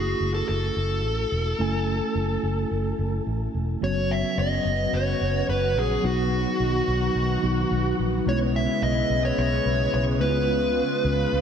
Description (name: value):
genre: pop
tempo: 108 BPM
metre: 4/4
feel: straight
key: unclear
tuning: A4 = 440 Hz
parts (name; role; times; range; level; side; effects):
- dark smooth lead guitar; melody; 0.0-11.4 s; F#4 to E5; -26 LUFS; equal; overdrive, shimmer reverb, tape echo
- mellow tine electric piano; accompaniment; 0.0-11.4 s; F#3 to G#5; -28 LUFS; equal; medium stereo tremolo, shimmer reverb
- vintage muted fingered electric bass; bass; 0.0-11.4 s; E1 to C#2; -26 LUFS; equal; none
- lush unison pad; sustained chords; 3.8-11.4 s; C#3 to F#4; -30 LUFS; right 1 dB; chorus, shimmer reverb
room: moderate lush hall reverb, RT60 2.5 s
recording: dreamy mix soaked in reverb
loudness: -22 LUFS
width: side -8 dB against mid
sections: 0.0-3.8 A section; 3.8-11.4 B section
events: none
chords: 0.0 F#m7; 3.8 F#sus4; 6.0 B; 8.3 E6/B; 10.2 C#7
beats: 0.49 1.04 | 1.60 2.15 2.71 3.27 | 3.82 4.38 4.93 5.49 | 6.04 6.60 7.15 7.71 | 8.27 8.82 9.38 9.93 | 10.49 11.04